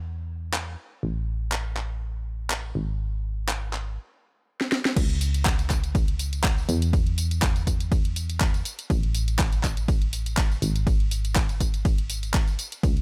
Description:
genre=piano house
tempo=122 BPM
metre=4/4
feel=swing 54% on 16ths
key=C# minor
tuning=A4 = 441 Hz
part: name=solid FM bass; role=bass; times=0.0-13.0 s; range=G#1 to E2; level=-30 LUFS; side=equal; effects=sidechain pumping
part: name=garage drum kit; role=drums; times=0.5-13.0 s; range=crash cymbal, handclaps, hi-hat, ride cymbal, snare drum, tambourine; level=-32 LUFS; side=equal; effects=overdrive
part: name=electronic kick drum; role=drums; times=5.0-12.9 s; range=none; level=-26 LUFS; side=equal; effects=none
room=digital ambience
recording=none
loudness=-26 LUFS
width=mono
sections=0.0-5.0 A section; 5.0-13.0 B section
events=filter sweep on drum 0.0-5.0; drum fill 4.6-5.0; drop 5.0-13.0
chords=none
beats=0.05 0.54 | 1.03 1.52 2.02 2.51 | 3.00 3.49 3.98 4.47 | 4.97 5.46 5.95 6.44 | 6.93 7.42 7.92 8.41 | 8.90 9.39 9.88 10.38 | 10.87 11.36 11.85 12.34 | 12.84

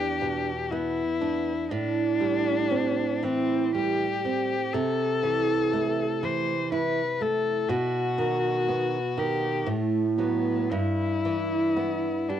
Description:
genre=romantic duo for cello and classical guitar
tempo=60 BPM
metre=3/4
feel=uneven beats, rubato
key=unclear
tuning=A4 = 439 Hz
part: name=warm cello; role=melody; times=0.0-12.4 s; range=A3 to C5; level=-27 LUFS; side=left 6 dB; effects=none
part: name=nylon-string guitar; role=accompaniment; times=0.0-12.4 s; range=E2 to E4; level=-27 LUFS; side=right 5 dB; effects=cassette tape
room=light reverb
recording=home recording on cassette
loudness=-24 LUFS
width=side -10 dB against mid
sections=0.0-12.4 A section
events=none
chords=0.0 Em7; 1.7 Am7; 4.7 Am/C; 7.7 B; 9.7 B5/A; 10.7 Em/G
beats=0.71 | 1.72 2.71 3.76 | 4.75 5.73 6.72 | 7.70 8.69 9.67 | 10.72 11.76

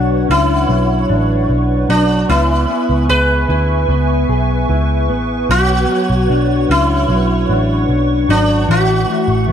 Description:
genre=dream pop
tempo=75 BPM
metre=4/4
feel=straight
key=unclear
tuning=A4 = 441 Hz
part: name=sitar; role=melody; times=0.0-9.5 s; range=D4 to B4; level=-17 LUFS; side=equal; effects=ping-pong delay
part: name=hollow soft pad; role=sustained chords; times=0.0-9.5 s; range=A3 to C#6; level=-21 LUFS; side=right 2 dB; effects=ensemble chorus
part: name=mellow electric guitar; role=arpeggios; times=0.0-9.5 s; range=E3 to G#4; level=-18 LUFS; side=left 2 dB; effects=wide subtle chorus, ping-pong delay
part: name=vintage muted picked electric bass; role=bass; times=0.0-9.5 s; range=G#1 to D2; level=-16 LUFS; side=right 1 dB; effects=none
room=light reverb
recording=dark, warm production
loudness=-12 LUFS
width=side -8 dB against mid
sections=0.0-9.5 A section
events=none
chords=0.0 Bmadd9; 2.3 C#m7; 5.5 Bmadd9; 8.7 F#m7/A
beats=0.69 1.49 | 2.29 3.09 3.89 4.69 | 5.49 6.29 7.09 7.89 | 8.69 9.49

